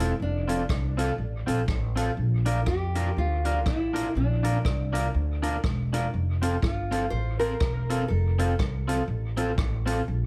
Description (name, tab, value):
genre	ska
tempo	122 BPM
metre	4/4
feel	swing 59% on 8ths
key	F major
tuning	A4 = 439 Hz
part	nylon-string guitar	melody	0.0-9.5 s	D4 to C5	-34 LUFS	equal	dub echo
part	electric guitar at the edge of break-up	accompaniment	0.0-10.0 s	C4 to Bb4	-32 LUFS	equal	none
part	upright bass	bass	0.0-10.3 s	E1 to F2	-29 LUFS	equal	none
part	swinging big-band drum kit	drums	0.0-10.0 s	hi-hat, kick drum, rim click	-33 LUFS	equal	dub echo
room	light reverb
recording	heavily compressed radio sound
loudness	-27 LUFS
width	mono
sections	0.0-10.3 A section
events	none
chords	0.0 F; 2.2 Bb; 6.1 F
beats	| 0.20 0.70 1.19 1.69 | 2.18 2.67 3.17 3.66 | 4.16 4.65 5.14 5.64 | 6.13 6.62 7.12 7.61 | 8.10 8.60 9.09 9.58 | 10.08